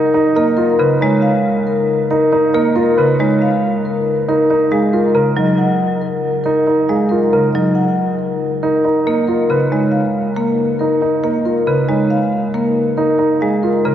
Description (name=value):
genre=classical, minimalist pattern music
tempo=138 BPM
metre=5/4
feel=straight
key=Db mixolydian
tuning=A4 = 440 Hz
part: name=vibraphone with medium mallets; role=melody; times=0.0-13.9 s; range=Bb4 to Gb5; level=-17 LUFS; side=left 2 dB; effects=none
part: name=warm grand piano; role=arpeggios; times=0.0-13.9 s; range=Eb4 to Cb5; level=-18 LUFS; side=right 4 dB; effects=none
part: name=marimba with hard mallets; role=accompaniment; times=0.4-13.9 s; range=Db3 to Bb3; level=-18 LUFS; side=equal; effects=none
room=wet cathedral reverb, RT60 5.8 s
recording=worn, warbling old tape, cassette tape, warbly pitch drift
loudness=-13 LUFS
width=side -10 dB against mid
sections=0.0-13.9 A section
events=none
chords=0.0 Db9; 4.3 Gbmaj9; 8.6 Db9; 13.0 Gbmaj9 (rootless)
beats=0.37 0.80 1.24 1.67 | 2.11 2.54 2.98 3.41 3.85 | 4.28 4.71 5.15 5.58 6.02 | 6.45 6.89 7.32 7.76 8.19 | 8.63 9.06 9.50 9.93 10.37 | 10.80 11.24 11.67 12.11 12.54 | 12.97 13.41 13.85